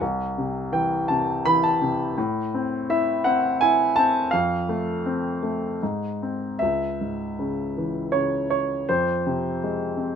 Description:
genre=classical, lyrical solo piano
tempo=81 BPM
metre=3/4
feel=uneven beats, rubato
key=unclear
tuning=A4 = 440 Hz
part: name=warm baby grand piano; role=solo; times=0.0-10.2 s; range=C2 to B5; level=-22 LUFS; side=equal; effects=none
room=light reverb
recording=none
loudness=-21 LUFS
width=side -7 dB against mid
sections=0.0-6.6 A section; 6.6-10.2 B section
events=none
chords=0.0 C; 2.2 Am; 4.3 F; 5.8 G#; 6.6 C#m; 8.9 Fm

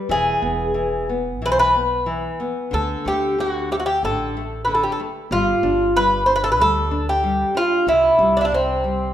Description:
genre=fado-style ballad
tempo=93 BPM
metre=4/4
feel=rubato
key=unclear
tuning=A4 = 439 Hz
part: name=nylon-string guitar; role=accompaniment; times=0.0-9.1 s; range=C3 to D4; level=-26 LUFS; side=left 3 dB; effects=none
part: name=Irish bouzouki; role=melody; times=0.1-9.1 s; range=C4 to C5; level=-18 LUFS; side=equal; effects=none
part: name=upright bass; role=bass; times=0.1-9.1 s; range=E1 to D2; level=-28 LUFS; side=right 1 dB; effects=none
room=moderate recital hall reverb, RT60 1.6 s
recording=minimal, uncompressed stereo recording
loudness=-17 LUFS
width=side -11 dB against mid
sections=0.0-9.1 A section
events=none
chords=0.1 E; 2.7 D5; 5.3 G5; 7.9 C

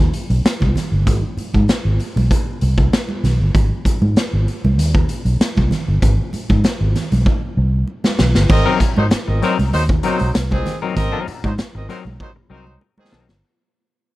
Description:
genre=funk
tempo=97 BPM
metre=4/4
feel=straight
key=Ab mixolydian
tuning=A4 = 439 Hz
part: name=vintage muted fingered electric bass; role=bass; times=0.0-13.4 s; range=G1 to Ab2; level=-17 LUFS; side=equal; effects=none
part: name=raw garage drum kit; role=drums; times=0.1-13.4 s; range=crash cymbal, hi-hat, kick drum, snare drum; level=-18 LUFS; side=equal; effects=none
part: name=congas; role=percussion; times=0.6-13.3 s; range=none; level=-24 LUFS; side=right 3 dB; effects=none
part: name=bright horn section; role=second line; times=8.5-13.2 s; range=Eb3 to Eb5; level=-22 LUFS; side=right 1 dB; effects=none
part: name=semi-hollow electric guitar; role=accompaniment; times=8.5-13.3 s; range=Gb3 to Bb4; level=-22 LUFS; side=left 7 dB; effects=spring reverb
room=little or no reverb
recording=none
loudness=-15 LUFS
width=side -18 dB against mid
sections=0.0-8.5 A section; 8.5-13.4 B section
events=drum fill 7.3-8.5, 12.2-13.4; fade-out 8.5-13.4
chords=0.0 Ab; 8.5 Ab9

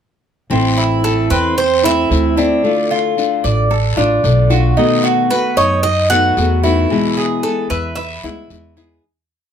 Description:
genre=latin, Cuban son and guajira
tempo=112 BPM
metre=4/4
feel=straight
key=A harmonic minor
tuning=A4 = 439 Hz
part: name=nylon-string guitar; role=accompaniment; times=0.5-9.0 s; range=B2 to F#4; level=-18 LUFS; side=left 5 dB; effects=none
part: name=Cuban tres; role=arpeggios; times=0.5-9.0 s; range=C4 to E5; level=-18 LUFS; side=right 3 dB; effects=none
part: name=upright bass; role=bass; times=0.5-9.0 s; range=A1 to F#2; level=-17 LUFS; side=right 1 dB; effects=none
part: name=guiro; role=percussion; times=0.5-9.0 s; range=none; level=-27 LUFS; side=left 6 dB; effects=none
part: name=Cuban tres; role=melody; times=1.0-8.7 s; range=A4 to F#5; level=-16 LUFS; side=right 2 dB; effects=plate reverb
room=light reverb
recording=none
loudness=-12 LUFS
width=side -8 dB against mid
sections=0.5-9.0 verse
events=fade-out 6.9-9.0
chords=0.5 Am; 2.6 Dm; 4.8 B7; 6.9 E

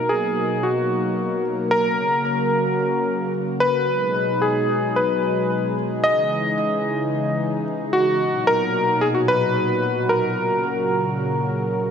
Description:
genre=synthwave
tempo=111 BPM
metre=4/4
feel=straight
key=unclear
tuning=A4 = 441 Hz
part: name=warm electric grand piano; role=melody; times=0.0-11.9 s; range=F#4 to D#5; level=-21 LUFS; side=equal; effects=digital delay
part: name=warm analog pad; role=sustained chords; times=0.0-11.9 s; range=A#2 to A#4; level=-23 LUFS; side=equal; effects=chorus
room=wet lush hall reverb, RT60 2.1 s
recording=bright 1980s-style digital production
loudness=-19 LUFS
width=side -7 dB against mid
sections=0.0-11.9 A section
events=none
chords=0.0 Bmaj7; 1.7 F#; 3.9 G#m7; 6.1 C#madd9; 8.2 Bmaj7; 10.4 F#

